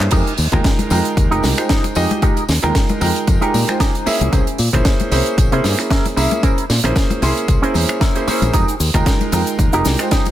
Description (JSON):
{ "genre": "nu-disco, nu disco", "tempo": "114 BPM", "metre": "4/4", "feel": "swing 54% on 16ths", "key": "F minor", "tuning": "A4 = 440 Hz", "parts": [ { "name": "warm concert grand piano", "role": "accompaniment", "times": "0.0-10.3 s", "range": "Ab3 to C6", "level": "-20 LUFS", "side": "right 2 dB", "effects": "sidechain pumping, dub echo" }, { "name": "electric guitar with an envelope filter", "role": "riff", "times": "0.0-10.3 s", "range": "Db4 to Bb5", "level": "-23 LUFS", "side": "right 1 dB", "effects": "analog chorus, low-pass filter, dub echo" }, { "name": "modern bright fingered electric bass", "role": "bass", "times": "0.0-9.9 s", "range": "F1 to C3", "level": "-18 LUFS", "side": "equal", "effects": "none" }, { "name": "tight funk drum kit", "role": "drums", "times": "0.0-10.3 s", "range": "cabasa, crash cymbal, finger snaps, handclaps, hi-hat, snare drum", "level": "-22 LUFS", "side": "right 2 dB", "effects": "none" }, { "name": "electronic kick drum", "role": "drums", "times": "0.1-10.2 s", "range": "none", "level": "-16 LUFS", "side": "equal", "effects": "none" }, { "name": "tambourine and congas", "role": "percussion", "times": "0.1-10.3 s", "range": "none", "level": "-26 LUFS", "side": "left 4 dB", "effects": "none" } ], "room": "studio reverb", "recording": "none", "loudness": "-14 LUFS", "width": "side -12 dB against mid", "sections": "0.0-10.3 A section", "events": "clean electric guitar fill 3.5-4.3", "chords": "0.1 Fm11; 4.1 C7b9b13; 8.5 Fm11" }